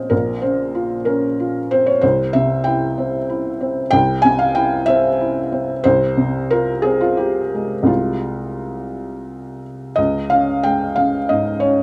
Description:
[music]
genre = neoclassical minimalist piano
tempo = 56-64 BPM (dotted quarters)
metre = 6/8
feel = rubato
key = F minor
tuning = A4 = 443 Hz
[part]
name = felt-muted upright piano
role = solo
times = 0.0-11.8 s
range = Bb1 to Ab5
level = -18 LUFS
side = equal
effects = none
[sound]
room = light reverb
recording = rough home demo mix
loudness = -18 LUFS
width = mono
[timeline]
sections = 0.0-10.0 A section; 10.0-11.8 B section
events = none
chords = 0.0 Bbmadd9; 2.0 C; 5.8 Fm/C; 10.0 Dbsus2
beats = | 0.12 1.07 | 2.03 2.97 | 3.93 4.88 | 5.85 6.85 | 7.88 8.93 | 9.97 10.96

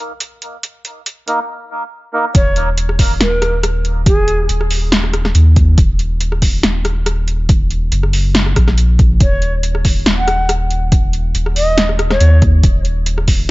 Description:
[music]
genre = deep dubstep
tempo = 140 BPM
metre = 4/4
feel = swing 53% on 16ths, half-time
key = Eb minor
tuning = A4 = 444 Hz
[part]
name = deep house drum kit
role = drums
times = 0.2-13.4 s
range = hi-hat, rim click, snare drum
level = -18 LUFS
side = equal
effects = overdrive
[part]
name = melodica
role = stabs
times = 1.3-2.3 s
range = Bb3 to Bb4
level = -21 LUFS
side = right 1 dB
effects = low-pass filter, dub echo
[part]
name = bright reedy long shakuhachi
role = melody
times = 2.3-4.4, 9.2-12.4 s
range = Ab4 to Gb5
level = -20 LUFS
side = equal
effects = dub echo
[part]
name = soft dub sub bass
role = bass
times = 2.3-13.5 s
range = Eb1 to Eb2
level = -14 LUFS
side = equal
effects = tube saturation
[part]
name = electronic kick drum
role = drums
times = 2.3-13.4 s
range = none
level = -13 LUFS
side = equal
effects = overdrive
[sound]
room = light reverb, digital ambience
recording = nothing above 7.7 kHz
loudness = -11 LUFS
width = side -20 dB against mid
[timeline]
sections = 0.0-2.3 A section; 2.3-13.5 B section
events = drop 2.3-13.5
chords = 0.0 Eb5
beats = 0.20 | 0.63 1.06 1.49 1.92 | 2.35 2.78 3.21 3.63 | 4.06 4.49 4.92 5.35 | 5.78 6.21 6.63 7.06 | 7.49 7.92 8.35 8.78 | 9.21 9.63 10.06 10.49 | 10.92 11.35 11.78 12.21 | 12.63 13.06

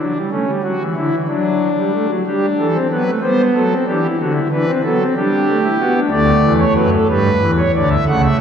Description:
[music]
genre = classical, baroque-style 4-part fugue for pipe organ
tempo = 62 BPM (dotted quarters)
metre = 6/8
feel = straight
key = unclear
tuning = A4 = 440 Hz
[part]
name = pipe organ, foundations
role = solo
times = 0.0-8.4 s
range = C#2 to F#5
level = -14 LUFS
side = equal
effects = none
[sound]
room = wet church reverb, RT60 3.7 s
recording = recorded in a church or concert hall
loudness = -14 LUFS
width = side -8 dB against mid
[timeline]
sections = 0.0-8.4 A section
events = none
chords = 0.3 A; 1.3 D/F#; 2.2 Am7; 4.2 D; 5.1 G; 6.1 D; 7.1 Em7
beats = | 0.30 1.27 | 2.23 3.20 | 4.17 5.15 | 6.12 7.09 | 8.07

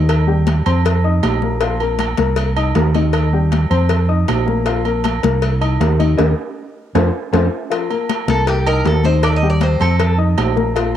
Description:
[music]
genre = latin, salsa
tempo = 157 BPM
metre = 4/4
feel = straight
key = unclear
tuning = A4 = 440 Hz
[part]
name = dark upright piano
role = accompaniment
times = 0.0-10.9 s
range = Eb3 to Eb6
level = -21 LUFS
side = left 7 dB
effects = cassette tape
[part]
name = fingered electric bass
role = bass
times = 0.0-11.0 s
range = Bb1 to F2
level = -16 LUFS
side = right 2 dB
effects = none
[part]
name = agogo bells and timbales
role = percussion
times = 0.1-11.0 s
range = none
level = -23 LUFS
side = right 11 dB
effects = none
[part]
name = congas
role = percussion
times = 0.1-11.0 s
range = none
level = -24 LUFS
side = left 9 dB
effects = none
[part]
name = cowbell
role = percussion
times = 0.1-11.0 s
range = none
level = -24 LUFS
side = left 8 dB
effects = none
[part]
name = Cuban tres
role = melody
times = 8.3-10.2 s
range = G4 to Eb5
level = -20 LUFS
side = left 1 dB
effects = cassette tape
[sound]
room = light reverb, small room ambience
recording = home recording on cassette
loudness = -14 LUFS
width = side -10 dB against mid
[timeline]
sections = 0.0-7.7 A section; 7.7-11.0 B section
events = drum fill 6.2-7.7; band accent 6.2-7.7; Cuban tres solo 7.7-11.0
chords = 0.1 Ebadd9; 0.9 F5; 1.6 Bb5; 2.4 Cm7; 3.1 Ebadd9; 3.9 F5; 4.7 Bb5; 5.4 Cm7; 6.2 Eb; 6.9 F; 7.7 Bb5; 8.5 Cm7; 9.2 Ebadd9; 10.0 F5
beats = | 0.09 0.47 0.85 1.23 | 1.61 1.99 2.37 2.75 | 3.13 3.52 3.90 4.28 | 4.66 5.04 5.42 5.80 | 6.18 6.57 6.95 7.33 | 7.71 8.09 8.47 8.86 | 9.24 9.62 10.00 10.38 | 10.76

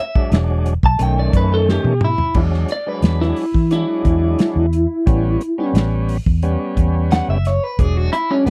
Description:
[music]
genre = straight-eighth soul blues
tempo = 88 BPM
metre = 4/4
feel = straight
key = E mixolydian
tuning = A4 = 439 Hz
[part]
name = electric guitar through a small old amp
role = melody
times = 0.0-8.5 s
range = B3 to A5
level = -22 LUFS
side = equal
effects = harmonic tremolo
[part]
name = tonewheel organ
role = accompaniment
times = 0.2-8.5 s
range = D#3 to D4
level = -26 LUFS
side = equal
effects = slow rotary speaker, overdrive
[part]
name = warm soul drum kit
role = drums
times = 0.2-8.5 s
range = crash cymbal, hi-hat, kick drum, snare drum, toms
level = -20 LUFS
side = equal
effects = none
[part]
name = vintage muted fingered electric bass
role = bass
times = 0.3-8.5 s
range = E1 to E3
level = -20 LUFS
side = equal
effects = none
[sound]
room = little or no reverb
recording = dry, close 1970s-style studio recording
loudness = -17 LUFS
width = mono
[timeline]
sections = 0.0-2.4 A section; 2.4-8.5 B section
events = clean electric guitar solo 0.0-2.4; drum fill 1.7-2.4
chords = 0.0 E9; 1.0 B9; 2.4 E9; 5.1 A9; 7.8 E9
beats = 0.32 0.99 1.67 | 2.35 3.03 3.71 4.39 | 5.07 5.75 6.43 7.11 | 7.79 8.47

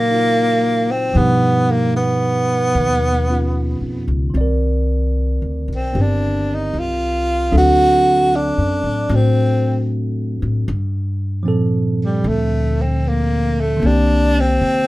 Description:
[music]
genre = jazz ballad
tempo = 76 BPM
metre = 4/4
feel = swing 68% on 8ths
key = unclear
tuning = A4 = 439 Hz
[part]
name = breathy tenor saxophone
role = melody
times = 0.0-14.9 s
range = G3 to F#4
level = -17 LUFS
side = equal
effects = none
[part]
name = bell-like tine electric piano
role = accompaniment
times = 0.0-14.9 s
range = Bb2 to D5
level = -21 LUFS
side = right 2 dB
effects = none
[part]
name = upright bass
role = bass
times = 0.0-14.9 s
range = G1 to C3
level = -19 LUFS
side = left 1 dB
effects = none
[sound]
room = moderate studio reverb, RT60 0.6 s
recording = minimal, uncompressed stereo recording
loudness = -15 LUFS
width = side -18 dB against mid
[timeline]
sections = 0.0-14.9 A section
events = none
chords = 0.0 Ebm9; 1.2 Gaug7; 4.3 Cm9; 7.5 D7; 10.7 Gm11; 13.8 Cm7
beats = 0.37 | 1.16 1.95 2.75 3.55 | 4.35 5.15 5.94 6.73 | 7.52 8.31 9.10 9.89 | 10.68 11.46 12.25 13.03 | 13.82 14.62

